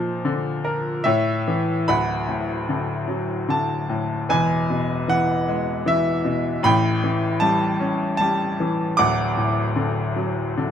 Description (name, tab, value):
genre	classical, lyrical solo piano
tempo	76 BPM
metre	3/4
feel	rubato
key	D major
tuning	A4 = 440 Hz
part	bright baby grand piano	solo	0.0-10.7 s	D1 to D6	-20 LUFS	equal	none
room	light reverb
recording	none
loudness	-19 LUFS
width	side -8 dB against mid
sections	0.0-1.9 A section; 1.9-10.7 B section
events	none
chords	0.0 Bbadd9; 1.0 A; 1.9 D; 4.3 Eadd9; 6.7 A7; 9.0 D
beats	0.23 1.05 | 1.87 2.68 3.49 | 4.30 5.09 5.88 | 6.65 7.43 8.21 | 8.98 9.76 10.57